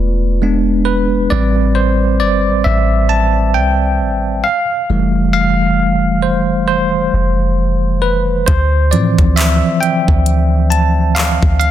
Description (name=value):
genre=contemporary R&B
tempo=67 BPM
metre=4/4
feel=swing 58% on 16ths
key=D dorian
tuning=A4 = 440 Hz
part: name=bell-like tine electric piano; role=accompaniment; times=0.0-11.7 s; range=E3 to A5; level=-14 LUFS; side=right 1 dB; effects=medium stereo tremolo
part: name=soft 808-style bass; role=bass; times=0.0-11.7 s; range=E1 to A2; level=-15 LUFS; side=equal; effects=none
part: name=smooth R&B drum kit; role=drums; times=8.5-11.7 s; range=handclaps, hi-hat, kick drum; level=-16 LUFS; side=equal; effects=none
room=light reverb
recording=dense, heavily limited modern master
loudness=-11 LUFS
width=side -11 dB against mid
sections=0.0-11.7 A section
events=tine electric piano solo 0.0-11.7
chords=0.4 E7; 1.3 Am9; 4.4 Fmaj7; 8.5 Dm9